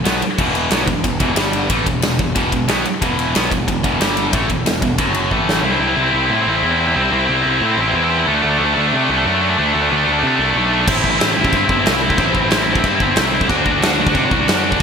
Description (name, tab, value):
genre	heavy metal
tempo	183 BPM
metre	4/4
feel	straight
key	unclear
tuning	A4 = 439 Hz
part	high-gain distorted guitar	riff	0.0-14.8 s	E2 to F#4	-16 LUFS	equal	distortion
part	fuzz picked electric bass	bass	0.0-14.8 s	E1 to C3	-22 LUFS	equal	overdrive
part	big rock drum kit	drums	0.1-5.6, 10.9-14.8 s	china cymbal, crash cymbal, kick drum, ride cymbal, snare drum	-19 LUFS	equal	gated reverb
room	moderate lush hall reverb, RT60 2.1 s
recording	bright 1980s-style digital production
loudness	-14 LUFS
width	side -6 dB against mid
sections	0.0-5.6 A section; 5.6-14.8 B section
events	drum fill 5.3-5.6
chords	0.0 E5; 1.4 G5; 1.7 E5; 4.0 G5; 4.3 E5; 5.0 F#5; 5.3 A5; 5.6 C; 8.3 D5; 10.9 Am; 13.5 D